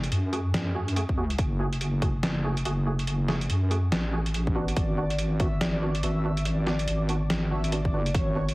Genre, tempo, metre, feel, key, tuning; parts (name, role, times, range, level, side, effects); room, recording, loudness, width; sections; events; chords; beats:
deep dubstep; 142 BPM; 4/4; swing 60% on 16ths, half-time; A4 = 440 Hz
wobble bass; bass; 0.0-8.5 s; F#1 to F#2; -26 LUFS; equal; chorus
trip hop sampler-style drum kit; drums; 0.0-8.5 s; hi-hat, snare drum; -31 LUFS; equal; overdrive
percussive organ stab; stabs; 0.3-8.4 s; A3 to G#4; -35 LUFS; right 2 dB; ensemble chorus, dub echo
electronic kick drum; drums; 1.1-8.2 s; -28 LUFS; equal
breathy flute-like synth lead; melody; 4.8-8.5 s; C#5 to E5; -34 LUFS; equal; tremolo, ensemble chorus, cassette tape, dub echo
light reverb, digital ambience; heavily compressed radio sound, multiband compression, vinyl crackle; -24 LUFS; side -21 dB against mid
0.0-8.5 A section
0.0 G#m7b5
0.12 0.54 0.96 | 1.39 1.81 2.23 2.65 | 3.08 3.50 3.92 4.34 | 4.77 5.19 5.61 6.03 | 6.46 6.88 7.30 7.72 | 8.15